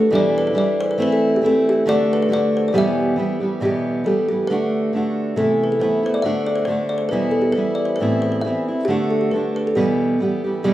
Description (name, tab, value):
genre	celtic folk, Celtic polka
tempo	137 BPM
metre	2/4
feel	swing 55% on 8ths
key	E minor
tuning	A4 = 438 Hz
part	kalimba	melody	0.0-10.7 s	G4 to E5	-20 LUFS	left 1 dB	none
part	fingerpicked steel-string acoustic guitar	accompaniment	0.0-10.7 s	E2 to G4	-20 LUFS	right 1 dB	none
room	wet large studio reverb, RT60 0.8 s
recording	band playing live in one room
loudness	-17 LUFS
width	side -14 dB against mid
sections	0.0-3.6 A section; 3.6-10.6 B section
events	none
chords	0.1 Em7; 1.0 Am/E; 1.9 D; 2.7 Em; 4.5 D; 5.4 Amadd9/C; 6.2 D; 7.1 Em; 8.0 Amadd9; 8.9 D; 9.8 Em